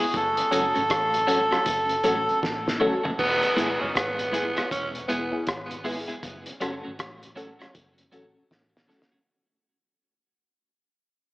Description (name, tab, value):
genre	roots reggae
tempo	79 BPM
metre	4/4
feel	swing 62% on 16ths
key	unclear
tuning	A4 = 441 Hz
part	melodica	melody	0.0-2.4 s	G#4 to A4	-24 LUFS	equal	tape echo
part	clean electric guitar	accompaniment	0.0-9.2 s	F#3 to G#4	-34 LUFS	right 1 dB	spring reverb, tape echo
part	mellow tonewheel organ	accompaniment	0.0-9.2 s	E2 to F#4	-37 LUFS	left 1 dB	chorus vibrato, slow rotary speaker, tape echo
part	filtered dub chord stab	stabs	0.0-9.1 s	B3 to A4	-30 LUFS	left 1 dB	phaser
part	vintage muted fingered electric bass	bass	0.1-8.9 s	E1 to A1	-42 LUFS	equal	none
part	cloth-damped thuddy drum kit	drums	0.1-9.2 s	crash cymbal, hi-hat, kick drum, rim click, snare drum, toms	-29 LUFS	equal	none
part	raspy tenor saxophone	second line	3.2-5.4 s	B3 to C#4	-27 LUFS	right 1 dB	tape echo
room	moderate concert hall reverb, RT60 2.3 s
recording	AM radio sound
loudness	-22 LUFS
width	side -20 dB against mid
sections	0.0-3.2 A section; 3.2-9.3 B section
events	drum fill 2.4-3.2, 8.5-9.3; fade-out 3.2-9.3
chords	0.1 F#m; 3.2 E; 6.2 F#m